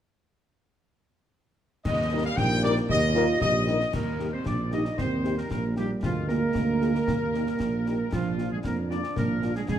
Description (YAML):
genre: military-style march for wind band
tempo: 115 BPM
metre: 2/4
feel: straight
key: Eb major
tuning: A4 = 440 Hz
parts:
  - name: clear trumpet section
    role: melody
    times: 1.9-9.8 s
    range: F4 to G5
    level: -33 LUFS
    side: equal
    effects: none
  - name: warm woodwind section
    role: second line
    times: 1.9-9.8 s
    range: F4 to G5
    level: -33 LUFS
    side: left 3 dB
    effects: none
  - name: dark trombone section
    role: sustained chords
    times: 1.9-9.8 s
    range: F3 to D4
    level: -37 LUFS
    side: equal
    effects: none
  - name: mellow tuba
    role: bass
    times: 1.9-9.8 s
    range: Bb1 to F2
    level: -30 LUFS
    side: right 2 dB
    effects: none
  - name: concert snare drum, clash cymbals and concert bass drum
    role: drums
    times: 1.9-9.8 s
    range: none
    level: -33 LUFS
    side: left 2 dB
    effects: none
  - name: mellow French horn section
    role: accompaniment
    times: 2.1-9.5 s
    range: G3 to Bb4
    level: -33 LUFS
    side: left 6 dB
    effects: none
  - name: dark euphonium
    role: second line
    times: 2.4-9.8 s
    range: F3 to G4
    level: -29 LUFS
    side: right 4 dB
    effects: none
room: moderate recital hall reverb, RT60 1.6 s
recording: none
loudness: -24 LUFS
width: side -10 dB against mid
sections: 1.9-3.9 A section; 3.9-9.8 B section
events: none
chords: 1.9 Eb; 6.0 Bb7/D; 7.1 Eb; 8.1 Bb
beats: | 1.85 2.37 | 2.90 3.42 | 3.94 4.46 | 4.99 5.51 | 6.03 6.55 | 7.08 7.60 | 8.12 8.64 | 9.17 9.69